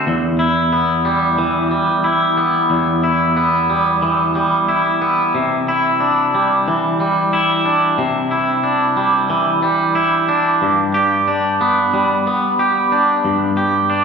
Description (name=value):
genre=rock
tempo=91 BPM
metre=4/4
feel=straight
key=E minor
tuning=A4 = 440 Hz
part: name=twangy electric guitar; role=solo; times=0.0-14.0 s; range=E2 to G4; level=-14 LUFS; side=equal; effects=harmonic tremolo
room=wet recital hall reverb, RT60 1.4 s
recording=recorded in a church or concert hall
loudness=-14 LUFS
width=side -6 dB against mid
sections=0.0-14.0 A section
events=none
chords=0.1 Em; 5.3 Cadd9; 10.6 G